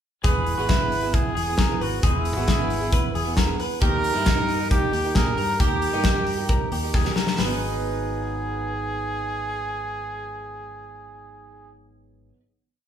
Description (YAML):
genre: jangly indie pop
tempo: 134 BPM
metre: 4/4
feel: straight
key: G# minor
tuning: A4 = 440 Hz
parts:
  - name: warm trumpet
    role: melody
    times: 0.2-11.7 s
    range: E4 to B4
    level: -28 LUFS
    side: right 1 dB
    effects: none
  - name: picked steel-string acoustic guitar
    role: accompaniment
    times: 0.2-12.5 s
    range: G#2 to A#4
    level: -31 LUFS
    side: right 5 dB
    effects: none
  - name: electric guitar through a small old amp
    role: arpeggios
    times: 0.2-8.7 s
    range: D#4 to B4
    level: -29 LUFS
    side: left 3 dB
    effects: none
  - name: fingered electric bass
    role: bass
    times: 0.2-12.3 s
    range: E1 to A#2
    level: -31 LUFS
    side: equal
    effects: none
  - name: modern studio drum kit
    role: drums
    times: 0.2-7.5 s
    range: hi-hat, kick drum, snare drum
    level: -23 LUFS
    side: equal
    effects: none
room: moderate large studio reverb, RT60 1.2 s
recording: band playing live in one room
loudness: -21 LUFS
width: side -9 dB against mid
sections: 0.2-7.4 bridge; 7.4-11.0 final chord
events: drum fill 6.9-7.4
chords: 0.2 E; 3.8 D#; 7.4 G#m7